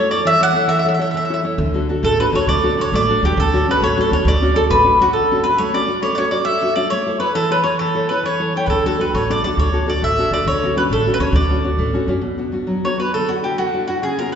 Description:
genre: italian folk, Italian serenade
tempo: 135 BPM (dotted quarters)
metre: 6/8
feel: straight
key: D major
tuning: A4 = 441 Hz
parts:
  - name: mandolin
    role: melody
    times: 0.0-14.4 s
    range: F#4 to F#5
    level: -17 LUFS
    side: equal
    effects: none
  - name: nylon-string guitar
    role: accompaniment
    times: 0.0-14.3 s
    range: B2 to C#5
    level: -20 LUFS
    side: left 1 dB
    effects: none
  - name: upright bass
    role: bass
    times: 1.6-5.1, 8.7-12.2 s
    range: A1 to F#2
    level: -20 LUFS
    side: right 1 dB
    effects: none
room: wet concert hall reverb, RT60 2.3 s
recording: recorded in a church or concert hall, nothing above 7.7 kHz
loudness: -15 LUFS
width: side -8 dB against mid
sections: 0.0-5.1 A section; 5.1-12.2 A section; 12.2-14.4 B section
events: none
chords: 0.0 A; 1.6 D; 3.4 Dmaj7; 6.9 A; 8.7 D; 10.5 Dmaj7; 12.2 Bm; 13.1 Dadd9

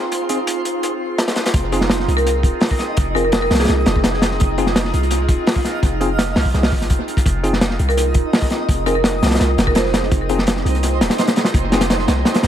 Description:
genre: drum and bass, jungle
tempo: 168 BPM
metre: 4/4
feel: straight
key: F minor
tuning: A4 = 441 Hz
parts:
  - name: warbly tape-like pad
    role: sustained chords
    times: 0.0-12.5 s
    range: C4 to Ab4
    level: -25 LUFS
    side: right 2 dB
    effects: chorus, built-in reverb, phaser
  - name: twinkling granular texture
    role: texture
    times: 0.0-12.5 s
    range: Eb4 to F5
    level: -26 LUFS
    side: right 2 dB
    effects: built-in reverb
  - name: crunchy breakbeat drum kit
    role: drums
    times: 0.1-12.5 s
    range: hi-hat, kick drum, snare drum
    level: -17 LUFS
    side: equal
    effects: high-pass filter on kick, high-pass filter on hats, high-pass filter on snare, high-pass filter on room, tape echo
  - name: bell-like tine electric piano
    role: stabs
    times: 0.3-11.8 s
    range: C4 to Ab4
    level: -26 LUFS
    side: left 3 dB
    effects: medium stereo tremolo, dub echo
  - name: warm 808-style bass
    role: bass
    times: 1.5-12.5 s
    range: Eb1 to C2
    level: -20 LUFS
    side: equal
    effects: none
  - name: marimba with hard mallets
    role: melody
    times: 2.2-3.9, 7.9-9.9 s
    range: Ab4 to C5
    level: -24 LUFS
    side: right 1 dB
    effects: dub echo
room: light reverb, studio reverb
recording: echo-heavy mix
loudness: -15 LUFS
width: side -10 dB against mid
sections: 0.0-1.5 A section; 1.5-12.5 B section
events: drop 1.5-12.5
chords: 0.0 Fm7

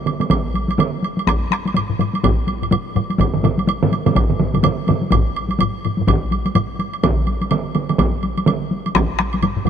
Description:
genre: japanese traditional, taiko drum ensemble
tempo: 125 BPM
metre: 4/4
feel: swing 60% on 16ths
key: none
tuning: none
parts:
  - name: solo taiko drums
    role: percussion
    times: 0.1-8.6 s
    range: none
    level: -21 LUFS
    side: right 6 dB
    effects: none
  - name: woodblock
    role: percussion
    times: 0.1-9.7 s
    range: none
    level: -26 LUFS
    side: right 6 dB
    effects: none
  - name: solo taiko drums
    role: percussion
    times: 0.2-9.7 s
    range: none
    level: -22 LUFS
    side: left 2 dB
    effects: none
  - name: taiko ensemble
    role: percussion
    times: 0.3-9.1 s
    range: none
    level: -22 LUFS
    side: equal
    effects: none
  - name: taiko ensemble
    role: percussion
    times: 1.3-9.7 s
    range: none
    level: -22 LUFS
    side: left 3 dB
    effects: none
room: moderate huge ambient reverb, RT60 3.9 s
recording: none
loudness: -16 LUFS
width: side -8 dB against mid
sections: 0.0-9.7 A section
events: none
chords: none

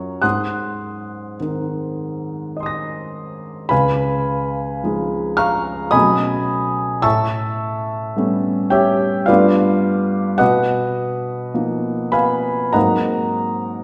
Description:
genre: classical, impressionist solo piano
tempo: 53 BPM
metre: 3/4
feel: rubato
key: unclear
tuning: A4 = 439 Hz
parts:
  - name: clear grand piano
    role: solo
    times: 0.0-13.8 s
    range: Db2 to Bb6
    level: -19 LUFS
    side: equal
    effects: none
room: wet recital hall reverb, RT60 1.6 s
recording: recorded in a church or concert hall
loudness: -19 LUFS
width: mono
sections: 0.0-13.8 A section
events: none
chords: 0.2 Ab9; 3.7 Db9; 5.9 B9; 7.0 A9; 9.3 G9; 10.4 Bmaj7#11; 12.8 Ab9

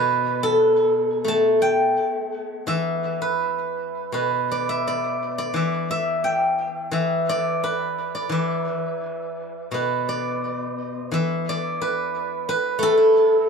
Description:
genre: chinese traditional, Chinese solo plucked strings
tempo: 82-92 BPM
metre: 2/4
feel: rubato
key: E yu mode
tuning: A4 = 441 Hz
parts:
  - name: steel-string zither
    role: solo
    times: 0.0-13.5 s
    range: B2 to A5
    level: -20 LUFS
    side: equal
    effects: tape echo
room: moderate studio ambience, RT60 0.5 s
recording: dark, warm production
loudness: -20 LUFS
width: side -5 dB against mid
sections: 0.0-9.7 A section; 9.7-13.5 B section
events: none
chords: none

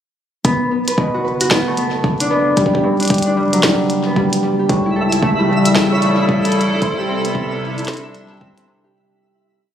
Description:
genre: IDM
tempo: 113 BPM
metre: 4/4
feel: swing 62% on 16ths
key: B minor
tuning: A4 = 440 Hz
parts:
  - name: concert harp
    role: arpeggios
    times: 0.4-9.7 s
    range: G2 to C5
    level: -16 LUFS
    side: equal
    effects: ping-pong delay
  - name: round analog bass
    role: bass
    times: 0.4-8.9 s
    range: F#1 to C#2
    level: -27 LUFS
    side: left 1 dB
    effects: tube saturation
  - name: electronic kick drum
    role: drums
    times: 0.4-8.5 s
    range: none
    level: -18 LUFS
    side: equal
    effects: none
  - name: glitchy drum kit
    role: drums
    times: 0.4-8.7 s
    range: hi-hat, snare drum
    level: -20 LUFS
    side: equal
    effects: ping-pong delay
  - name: hollow soft pad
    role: sustained chords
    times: 5.1-8.9 s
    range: C3 to A4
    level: -19 LUFS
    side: left 1 dB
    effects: chorus
  - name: twinkling granular texture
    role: texture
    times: 4.9-9.0 s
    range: E4 to E5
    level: -23 LUFS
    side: equal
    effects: built-in reverb
room: light reverb, digital ambience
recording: recorded on a phone in the room, club reverb, compression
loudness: -14 LUFS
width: side -9 dB against mid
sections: 0.4-8.9 groove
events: fade-out 6.1-8.9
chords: 0.4 Bm7; 2.6 G; 4.7 A7; 6.8 C6

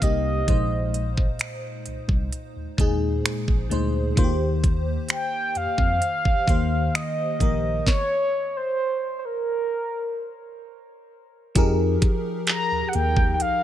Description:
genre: contemporary R&B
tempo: 65 BPM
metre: 4/4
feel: straight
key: unclear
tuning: A4 = 440 Hz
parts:
  - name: mellow horn-like synth lead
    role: melody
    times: 0.0-13.6 s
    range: Bb4 to Bb5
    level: -25 LUFS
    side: right 1 dB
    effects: chorus, ping-pong delay
  - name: FM electric piano with soft pad layer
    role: accompaniment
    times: 0.0-13.6 s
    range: Bb2 to C5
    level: -27 LUFS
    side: left 2 dB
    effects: chorus
  - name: mellow tine electric piano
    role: bass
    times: 0.0-13.5 s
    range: Bb1 to F2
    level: -26 LUFS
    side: equal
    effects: medium stereo tremolo
  - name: trap drum kit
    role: drums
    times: 0.0-13.6 s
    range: finger snaps, handclaps, hi-hat, kick drum, snare drum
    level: -22 LUFS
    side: equal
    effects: vintage 12-bit sampler grit
room: little or no reverb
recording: none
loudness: -21 LUFS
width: side -12 dB against mid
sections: 0.0-11.6 A section; 11.6-13.6 B section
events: stop 7.9-11.6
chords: 0.5 Bb9sus4; 4.2 Eb6; 7.9 N.C.; 11.6 Fm11

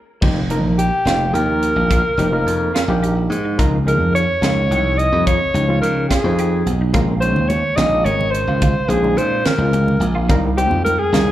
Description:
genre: electric jazz fusion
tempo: 72 BPM (dotted quarters)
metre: 6/8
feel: straight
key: unclear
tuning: A4 = 438 Hz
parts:
  - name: overdriven reed electric piano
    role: accompaniment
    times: 0.2-11.3 s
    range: F3 to Db5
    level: -23 LUFS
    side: left 1 dB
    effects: medium tremolo, slapback echo
  - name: clean electric guitar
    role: stabs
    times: 0.2-11.3 s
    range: Eb4 to G4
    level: -29 LUFS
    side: right 3 dB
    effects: ensemble chorus, slapback echo
  - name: slap bass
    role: bass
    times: 0.2-11.3 s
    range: F1 to Db3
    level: -18 LUFS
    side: equal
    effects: none
  - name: tight funk drum kit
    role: drums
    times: 0.2-11.3 s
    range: crash cymbal, hi-hat, kick drum, snare drum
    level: -21 LUFS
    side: equal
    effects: none
  - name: mellow alto saxophone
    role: melody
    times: 0.8-11.3 s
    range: G4 to Eb5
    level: -19 LUFS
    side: equal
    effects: slapback echo
  - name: congas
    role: percussion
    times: 6.9-11.3 s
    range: none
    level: -25 LUFS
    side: right 2 dB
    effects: slapback echo
room: light reverb, studio reverb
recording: live gig heard through the venue's PA, club reverb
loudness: -14 LUFS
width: side -13 dB against mid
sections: 0.2-11.3 A section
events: drum fill 0.0; band accent 0.0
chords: 0.2 F9sus4; 3.6 Dbmaj9; 6.9 Bbm9; 10.3 Cm7

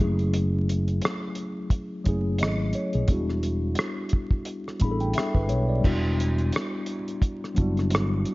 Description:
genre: R&B, neo-soul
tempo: 87 BPM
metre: 4/4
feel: swing 54% on 16ths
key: E dorian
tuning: A4 = 439 Hz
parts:
  - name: mellow tine electric piano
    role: accompaniment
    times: 0.0-8.3 s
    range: F#3 to B5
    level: -27 LUFS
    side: left 1 dB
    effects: medium stereo tremolo
  - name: mellow fretless electric bass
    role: bass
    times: 0.0-8.2 s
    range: E1 to B1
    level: -26 LUFS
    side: equal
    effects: wide subtle chorus
  - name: cloth-damped thuddy drum kit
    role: drums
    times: 0.2-8.3 s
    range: crash cymbal, hi-hat, kick drum, rim click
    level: -26 LUFS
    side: equal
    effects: none
room: small room ambience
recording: dark, warm production, vinyl crackle, nothing above 7.5 kHz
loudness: -23 LUFS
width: side -21 dB against mid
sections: 0.0-5.8 A section; 5.8-8.3 A section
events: tine electric piano fill 4.5-5.8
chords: 0.0 F#m9; 3.1 Em9

